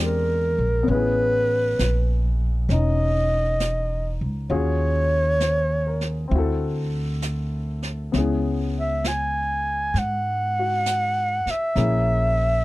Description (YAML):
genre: jazz ballad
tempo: 66 BPM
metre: 4/4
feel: swing 67% on 8ths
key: unclear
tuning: A4 = 441 Hz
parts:
  - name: breathy clarinet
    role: melody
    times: 0.0-12.6 s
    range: A#4 to G#5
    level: -23 LUFS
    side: right 1 dB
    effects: none
  - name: warm upright piano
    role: accompaniment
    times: 0.0-12.6 s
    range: G#3 to B#4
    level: -29 LUFS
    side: left 5 dB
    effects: none
  - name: upright bass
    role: bass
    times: 0.0-12.6 s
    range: E1 to G#2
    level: -23 LUFS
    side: equal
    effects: none
  - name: jazz brush drum kit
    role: drums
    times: 0.9-12.6 s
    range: brushed snare drum, hi-hat, snare drum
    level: -33 LUFS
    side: right 2 dB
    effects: none
room: little or no reverb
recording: dry, close 1970s-style studio recording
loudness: -20 LUFS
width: side -18 dB against mid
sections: 0.0-12.6 A section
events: none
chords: 0.0 E7alt; 0.9 Amaj9; 4.5 D#m11; 6.3 D9; 8.1 C#m7; 11.8 A#m7b5